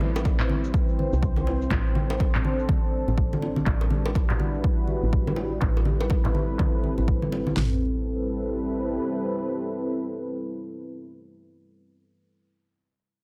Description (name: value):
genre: afro house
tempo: 123 BPM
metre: 4/4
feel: swing 60% on 16ths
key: A dorian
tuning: A4 = 440 Hz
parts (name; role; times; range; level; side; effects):
- dark analog pad; sustained chords; 0.0-12.2 s; G3 to C5; -31 LUFS; equal; chorus, vintage 12-bit sampler grit, sidechain pumping
- woody FM bass; bass; 0.0-9.0 s; A1 to C2; -31 LUFS; equal; sidechain pumping
- congas; percussion; 0.0-7.5 s; none; -34 LUFS; equal; none
- electronic cabasa and handclaps; drums; 0.2-7.5 s; none; -38 LUFS; equal; overdrive, low-pass filter on snare, low-pass filter on perc, low-pass filter on room
- bongos; percussion; 0.2-7.4 s; none; -39 LUFS; equal; none
- deep house drum kit; drums; 0.3-7.7 s; kick drum, snare drum, toms; -28 LUFS; equal; overdrive
room: moderate lush hall reverb, RT60 2.1 s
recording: dreamy mix soaked in reverb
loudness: -25 LUFS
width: mono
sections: 0.0-7.6 A section; 7.6-11.5 B section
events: filter sweep on drum 0.0-7.6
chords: 0.0 Cmaj7/A; 1.7 D7sus4/A; 3.7 Em9/A; 5.6 Am9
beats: 0.25 0.74 1.23 | 1.71 2.20 2.69 3.18 | 3.66 4.15 4.64 5.13 | 5.62 6.10 6.59 7.08 | 7.57 8.05 8.54 9.03 | 9.52 10.01 10.49 10.98